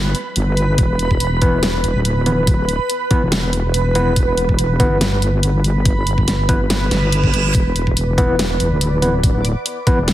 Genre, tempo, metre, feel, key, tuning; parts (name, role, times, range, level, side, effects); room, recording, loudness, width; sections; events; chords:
deep dubstep; 142 BPM; 4/4; swing 54% on 16ths, half-time; E minor; A4 = 440 Hz
wobble bass; bass; 0.0-10.1 s; D1 to G1; -17 LUFS; equal; chorus
backwards swelling texture; texture; 0.0-10.1 s; B4 to D5; -23 LUFS; right 2 dB; built-in reverb
dubstep drum kit; drums; 0.1-10.1 s; hi-hat, snare drum; -21 LUFS; equal
electronic kick drum; drums; 0.8-10.0 s; -16 LUFS; equal
overdriven tine electric piano; stabs; 1.4-10.0 s; E3 to B4; -22 LUFS; equal; fast tremolo, dub echo
reverse cymbal; sound effects; 6.9-7.5 s; -24 LUFS; right 6 dB
light reverb, digital ambience; heavily compressed radio sound, multiband compression; -14 LUFS; side -13 dB against mid
0.0-10.1 A section
reverse cymbal 6.9-7.5
0.0 E5